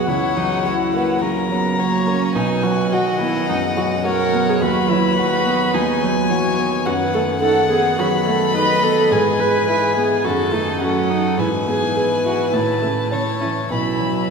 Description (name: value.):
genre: quick classical-period movement for piano quintet.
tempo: 106 BPM.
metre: 4/4.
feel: rubato.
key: B major, E major from 6.9 s.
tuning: A4 = 440 Hz.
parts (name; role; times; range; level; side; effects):
dark violin; melody; 0.0-14.2 s; F#5 to B5; -23 LUFS; left 5 dB; none.
warm cello; second line; 0.0-14.3 s; C#3 to G#3; -25 LUFS; right 7 dB; none.
warm violin; second line; 0.0-14.3 s; G#4 to F#5; -24 LUFS; left 1 dB; none.
clear baby grand piano; accompaniment; 0.0-14.3 s; B1 to C#5; -22 LUFS; left 1 dB; none.
warm viola; accompaniment; 0.0-14.3 s; A#3 to B4; -21 LUFS; right 2 dB; none.
room: wet church reverb, RT60 3.2 s.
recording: recorded in a church or concert hall.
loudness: -16 LUFS.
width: side -5 dB against mid.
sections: 0.0-14.3 A section.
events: none.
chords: 0.1 F#7/C#; 2.4 B; 4.6 B/D#; 6.9 B7/F#; 9.1 E/G#; 10.3 D#dim/F#; 11.4 E/G#; 12.5 A; 13.7 B5.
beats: | 0.08 0.66 1.22 1.79 | 2.36 2.92 3.49 4.06 | 4.62 5.18 5.74 6.30 | 6.86 7.42 7.99 8.55 | 9.12 9.68 10.25 10.82 | 11.39 11.96 12.54 13.12 | 13.71.